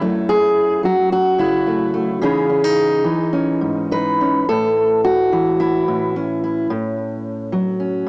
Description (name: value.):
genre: folk, solo fingerstyle acoustic guitar.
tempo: 109 BPM.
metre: 4/4.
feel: rubato.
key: C# minor.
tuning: A4 = 444 Hz.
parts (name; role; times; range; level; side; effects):
fingerpicked steel-string acoustic guitar; solo; 0.0-8.1 s; F#2 to B4; -15 LUFS; equal; analog delay.
room: light reverb.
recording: home recording on cassette, small speaker sound.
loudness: -15 LUFS.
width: side -40 dB against mid.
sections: 0.0-4.5 A section; 4.5-8.1 B section.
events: none.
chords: 0.0 F#m7; 2.2 C#madd9; 4.5 A; 6.7 F#m/A.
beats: | 0.02 0.57 1.12 1.66 | 2.21 2.76 3.33 3.90 | 4.47 5.03 5.58 6.14 | 6.69 7.24 7.78.